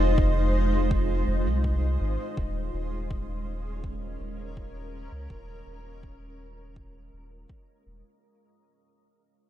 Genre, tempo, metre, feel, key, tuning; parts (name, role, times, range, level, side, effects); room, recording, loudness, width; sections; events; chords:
ambient dub; 82 BPM; 4/4; straight; A4 = 440 Hz
granular cloud pad; sustained chords; 0.0-8.2 s; Ab3 to Eb5; -31 LUFS; equal; built-in reverb
soft dub sub bass; bass; 0.0-8.0 s; Eb1 to Db2; -28 LUFS; equal
electronic kick drum; drums; 0.2-7.6 s; -30 LUFS; equal; overdrive
shaker; drums; 0.2-8.2 s; -57 LUFS; right 1 dB
small room ambience; dark, warm production; -25 LUFS; side -12 dB against mid
0.0-8.2 A section
fade-out 0.0-8.2
0.0 Fm7; 2.4 Eb9sus4